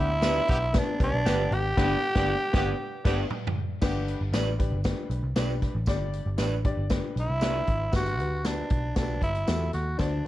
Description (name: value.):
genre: uptempo 1960s-style soul.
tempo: 117 BPM.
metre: 4/4.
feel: straight.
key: G major.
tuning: A4 = 440 Hz.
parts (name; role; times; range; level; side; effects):
growling tenor saxophone; melody; 0.0-3.3, 7.2-10.3 s; D4 to G4; -29 LUFS; right 1 dB; plate reverb.
warm horn section; second line; 0.0-4.2 s; D3 to G4; -37 LUFS; right 1 dB; plate reverb, analog delay.
warm upright piano; accompaniment; 0.0-10.3 s; G2 to D5; -34 LUFS; left 4 dB; plate reverb.
vintage muted picked electric bass; bass; 0.0-10.2 s; G1 to E2; -29 LUFS; equal; none.
electric guitar through a small old amp; stabs; 0.2-7.6 s; D4 to D5; -35 LUFS; right 7 dB; analog delay.
swinging big-band drum kit; drums; 0.2-10.1 s; crash cymbal, hi-hat, kick drum, snare drum, toms; -29 LUFS; equal; none.
tambourine; percussion; 0.2-10.1 s; none; -46 LUFS; right 5 dB; none.
room: light reverb.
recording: cassette tape.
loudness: -24 LUFS.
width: side -15 dB against mid.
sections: 0.0-3.8 A section; 3.8-7.9 B section; 7.9-10.3 C section.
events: band accent 1.8-3.8; drum fill 2.8-3.8.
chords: 0.0 G; 7.9 Gmaj7.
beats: 0.23 0.75 1.26 | 1.77 2.29 2.80 3.31 | 3.83 4.34 4.85 5.37 | 5.88 6.39 6.91 7.42 | 7.94 8.45 8.97 9.48 | 10.00.